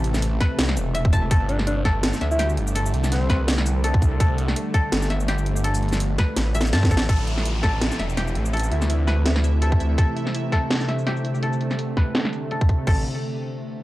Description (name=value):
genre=half-time drum and bass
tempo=166 BPM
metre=4/4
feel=swing 56% on 16ths, half-time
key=A minor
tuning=A4 = 440 Hz
part: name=bowed-like drone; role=sustained chords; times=0.0-13.0 s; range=C3 to A3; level=-28 LUFS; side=equal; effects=built-in reverb, sidechain pumping
part: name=koto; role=arpeggios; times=0.0-13.1 s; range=G4 to A5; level=-30 LUFS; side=left 2 dB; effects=low-pass filter, analog delay
part: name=phased detuned saw bass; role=bass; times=0.0-10.0, 12.9-13.0 s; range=E1 to G2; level=-22 LUFS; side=equal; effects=phaser
part: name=drum and bass drum kit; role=drums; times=0.0-13.0 s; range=crash cymbal, hi-hat, shaker, snare drum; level=-26 LUFS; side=equal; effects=overdrive, low-pass filter on hats, small room ambience, low-pass filter on snare, low-pass filter on perc, low-pass filter on cymbals
part: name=electronic kick drum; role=drums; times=0.4-13.0 s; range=none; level=-19 LUFS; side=equal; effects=overdrive, small room ambience
part: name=dark alto saxophone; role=melody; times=1.5-3.4 s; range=C4 to E4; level=-29 LUFS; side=equal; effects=vintage 12-bit sampler grit, analog delay
part: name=downlifter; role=sound effects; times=7.1-10.0 s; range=none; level=-35 LUFS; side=left 1 dB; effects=none
part: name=pulsing gated texture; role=texture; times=7.3-12.9 s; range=E4 to E5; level=-36 LUFS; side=right 2 dB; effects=chorus, built-in reverb
room=light reverb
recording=dry, gritty hardware recording, cassette tape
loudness=-19 LUFS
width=side -17 dB against mid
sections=0.0-7.1 A section; 7.1-12.9 B section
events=drop 0.0-7.1; drum fill 6.4-7.1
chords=0.0 Am; 1.3 Gsus2; 7.1 Am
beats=0.22 0.58 0.94 | 1.31 1.67 2.03 2.39 | 2.75 3.11 3.48 3.84 | 4.20 4.56 4.92 5.28 | 5.64 6.00 6.37 6.73 | 7.09 7.45 7.81 8.17 | 8.54 8.90 9.26 9.62 | 9.98 10.34 10.70 11.06 | 11.43 11.79 12.15 12.51 | 12.87